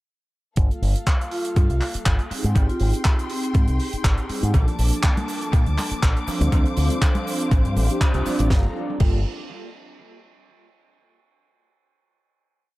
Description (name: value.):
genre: nu-disco, nu disco.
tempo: 121 BPM.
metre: 4/4.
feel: swing 54% on 16ths.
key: G minor.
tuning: A4 = 440 Hz.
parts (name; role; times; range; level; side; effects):
mellow synth brass; accompaniment; 0.6-9.2 s; F3 to D5; -29 LUFS; right 1 dB; chorus, sidechain pumping, analog delay.
dark symphonic string section; sustained chords; 0.6-8.7 s; Bb3 to D6; -34 LUFS; left 2 dB; sidechain pumping.
fingered electric bass with an envelope filter; bass; 0.6-9.2 s; G1 to Bb2; -22 LUFS; equal; sidechain pumping.
damped 70s drum kit; drums; 0.6-9.1 s; crash cymbal, handclaps, hi-hat, snare drum; -29 LUFS; right 1 dB; analog delay.
electronic kick drum; drums; 0.6-9.1 s; none; -19 LUFS; equal; overdrive.
vibraphone with medium mallets; melody; 1.3-3.5 s; C4 to F4; -31 LUFS; equal; tape echo.
egg shaker and congas; percussion; 4.5-8.5 s; none; -33 LUFS; right 1 dB; none.
room: light reverb, small room ambience.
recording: echo-heavy mix.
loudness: -19 LUFS.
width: side -19 dB against mid.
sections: 0.6-8.5 groove; 8.5-10.5 final chord.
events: filter sweep on analog polysynth 0.6-8.5; band accent 8.0.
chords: 0.6 Gm9; 2.3 Abmaj7; 4.5 Bbmaj7; 6.3 Dm7; 8.5 Gm9.